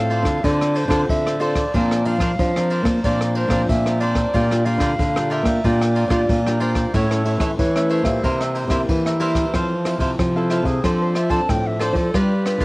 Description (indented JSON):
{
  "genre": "samba and choro",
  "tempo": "92 BPM",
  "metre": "4/4",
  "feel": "straight",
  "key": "D minor, F major from 9.5 s",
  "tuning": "A4 = 438 Hz",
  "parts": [
    { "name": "warm clarinet", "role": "melody", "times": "0.0-12.6 s", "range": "E4 to A5", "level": "-25 LUFS", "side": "equal", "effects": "cassette tape" },
    { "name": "cavaquinho", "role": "accompaniment", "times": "0.0-12.6 s", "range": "D4 to G5", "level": "-27 LUFS", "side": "right 1 dB", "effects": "cassette tape, plate reverb" },
    { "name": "nylon-string guitar", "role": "accompaniment", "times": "0.0-12.6 s", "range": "G2 to B4", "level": "-25 LUFS", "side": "left 1 dB", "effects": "cassette tape, plate reverb" },
    { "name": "nylon-string guitar", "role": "bass", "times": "0.0-12.6 s", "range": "A2 to Bb3", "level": "-20 LUFS", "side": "equal", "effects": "none" },
    { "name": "jazz brush drum kit", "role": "drums", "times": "0.1-12.6 s", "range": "kick drum, ride cymbal, rim click", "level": "-25 LUFS", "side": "equal", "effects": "cassette tape" }
  ],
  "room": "light reverb",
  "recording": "home recording on cassette",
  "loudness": "-17 LUFS",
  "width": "side -24 dB against mid",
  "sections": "0.0-9.5 A section; 9.5-12.6 B section",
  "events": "clarinet solo 9.5-12.6",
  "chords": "0.0 Dm7; 1.7 Bbadd9; 4.3 Gm7/Bb; 6.9 A; 8.2 C7; 9.5 Fmaj7; 10.8 Dm7/F; 12.1 G7"
}